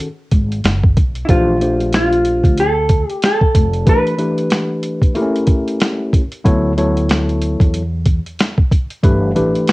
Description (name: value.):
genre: hip hop, jazz-hop.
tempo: 93 BPM.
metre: 4/4.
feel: swing 59% on 16ths.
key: unclear.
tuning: A4 = 440 Hz.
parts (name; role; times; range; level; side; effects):
hollow-body jazz guitar; melody; 0.0-4.8 s; E4 to B4; -16 LUFS; equal; cassette tape.
mellow tine electric piano; accompaniment; 0.0-9.7 s; E3 to C#5; -18 LUFS; left 1 dB; cassette tape.
boom bap sampler-style drum kit; drums; 0.0-9.7 s; hi-hat, kick drum, snare drum; -14 LUFS; equal; cassette tape.
upright bass; bass; 0.3-9.5 s; F1 to E2; -19 LUFS; equal; none.
room: light reverb.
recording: home recording on cassette.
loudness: -13 LUFS.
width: side -20 dB against mid.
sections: 0.0-9.7 A section.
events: none.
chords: 0.0 B5; 1.3 Bbmaj7; 3.9 Em7; 5.2 A7b9; 6.5 Dmaj9; 9.0 Gadd9.